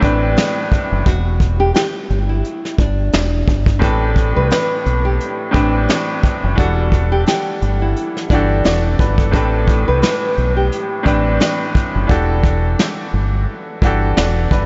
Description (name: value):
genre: hip hop, boom-bap hip-hop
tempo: 87 BPM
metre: 4/4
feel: swing 57% on 16ths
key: E minor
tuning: A4 = 440 Hz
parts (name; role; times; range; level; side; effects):
- nylon-string guitar; melody; 0.0-11.6 s; D4 to B4; -24 LUFS; equal; high-pass filter, low-pass filter, analog delay
- bright upright piano; accompaniment; 0.0-14.7 s; A2 to F#5; -23 LUFS; equal; cassette tape, high-pass filter, low-pass filter
- deep dub fingered electric bass; bass; 0.0-14.7 s; E1 to C2; -20 LUFS; equal; none
- vintage brush drum kit; drums; 0.0-14.7 s; hi-hat, kick drum, snare drum; -21 LUFS; equal; none
room: moderate cathedral reverb, RT60 6.5 s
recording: dreamy mix soaked in reverb, nothing above 7.8 kHz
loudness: -16 LUFS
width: mono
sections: 0.0-14.7 A section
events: hi-hats muted 12.1-14.7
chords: 0.0 Am11; 1.1 Em7; 3.8 Am11; 6.6 Em11; 9.3 Am11; 12.1 Em11